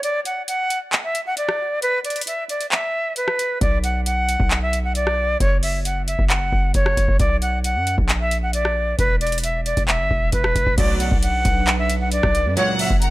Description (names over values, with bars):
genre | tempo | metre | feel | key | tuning
hip hop, trap | 134 BPM | 4/4 | half-time | B harmonic minor | A4 = 441 Hz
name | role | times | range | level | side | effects
bright reedy jazz flute | melody | 0.0-13.1 s | B4 to F#5 | -22 LUFS | equal | none
booming analog drum machine | drums | 0.0-13.1 s | crash cymbal, handclaps, hi-hat, kick drum, rim click | -21 LUFS | equal | none
hard-hitting 808-style bass | bass | 3.6-13.1 s | E1 to F#2 | -23 LUFS | equal | none
warm studio violin section | second line | 10.8-13.1 s | D5 to A#5 | -27 LUFS | equal | tape echo
airy breathy pad | sustained chords | 10.8-13.1 s | F#3 to B4 | -29 LUFS | right 4 dB | chorus
sync-sweep polysynth | stabs | 10.8-12.9 s | C#2 to F#3 | -26 LUFS | right 3 dB | chorus
room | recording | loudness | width
little or no reverb | none | -18 LUFS | side -18 dB against mid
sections
0.0-10.8 A section; 10.8-13.1 B section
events
break 0.0-3.6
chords
0.0 N.C.; 3.6 Bm; 5.4 F#5; 7.2 Bm; 9.0 E5; 10.8 Bm; 12.6 F#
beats
| 0.03 0.48 0.93 1.38 | 1.82 2.27 2.72 3.17 | 3.61 4.06 4.51 4.96 | 5.40 5.85 6.30 6.75 | 7.20 7.64 8.09 8.54 | 8.99 9.43 9.88 10.33 | 10.78 11.22 11.67 12.12 | 12.57 13.02